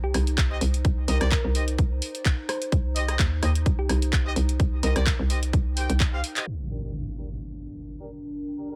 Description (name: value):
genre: bass house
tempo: 128 BPM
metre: 4/4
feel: swing 55% on 16ths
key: unclear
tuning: A4 = 439 Hz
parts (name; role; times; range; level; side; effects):
- thumb-piano-like synth pluck; melody; 0.0-5.0 s; G4 to C5; -38 LUFS; equal; chorus, dub echo
- hollow knocking FM bass; bass; 0.0-6.2 s; C2 to Eb2; -27 LUFS; equal; overdrive, sidechain pumping
- warbly tape-like pad; texture; 0.0-8.8 s; D4 to G5; -40 LUFS; equal; chorus, built-in reverb, sidechain pumping
- house drum kit; drums; 0.1-8.8 s; handclaps, hi-hat, rim click, shaker; -32 LUFS; equal; low-pass filter on hats, low-pass filter on snare, low-pass filter on perc, low-pass filter on room
- electronic kick drum; drums; 0.4-6.1 s; none; -25 LUFS; equal; none
- warm horn section; stabs; 0.5-8.8 s; D4 to G5; -36 LUFS; equal; sidechain pumping, low-pass filter, dub echo
- impact; sound effects; 6.5-8.3 s; none; -37 LUFS; equal; none
room: little or no reverb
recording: low-pass filter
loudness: -25 LUFS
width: mono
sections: 0.0-6.5 A section; 6.5-8.8 B section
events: drum fill 6.0-6.5; band accent 6.4; impact 6.5-8.3; filter sweep on horn section 6.5-8.8; filter sweep 6.5-8.8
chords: 0.0 Cm; 6.5 Gm